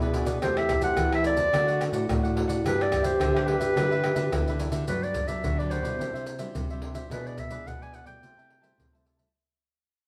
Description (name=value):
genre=samba and choro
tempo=108 BPM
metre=4/4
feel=straight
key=G major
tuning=A4 = 439 Hz
part: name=breathy trombone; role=second line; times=0.0-4.8 s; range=E4 to G4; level=-32 LUFS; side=equal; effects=none
part: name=cavaquinho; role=accompaniment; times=0.0-9.3 s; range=D4 to A5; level=-40 LUFS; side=equal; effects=none
part: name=nylon-string guitar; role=accompaniment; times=0.0-9.3 s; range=G2 to G#4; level=-40 LUFS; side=equal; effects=none
part: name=nylon-string guitar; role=bass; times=0.0-9.3 s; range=E2 to E3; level=-34 LUFS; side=equal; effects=none
part: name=maracas, pandeiro, surdo and tamborim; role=percussion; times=0.0-9.3 s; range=none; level=-33 LUFS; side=equal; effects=none
part: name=warm clarinet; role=melody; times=0.4-9.0 s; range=B4 to G#5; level=-31 LUFS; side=equal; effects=none
room=wet large studio reverb, RT60 1.0 s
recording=band playing live in one room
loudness=-26 LUFS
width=mono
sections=0.0-4.9 A section; 4.9-9.3 B section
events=fade-out 4.9-9.3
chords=0.4 Am7/E; 1.5 D; 2.7 G6; 4.9 Gmaj7; 6.0 Cadd9; 7.1 E7/B; 8.2 Am7/C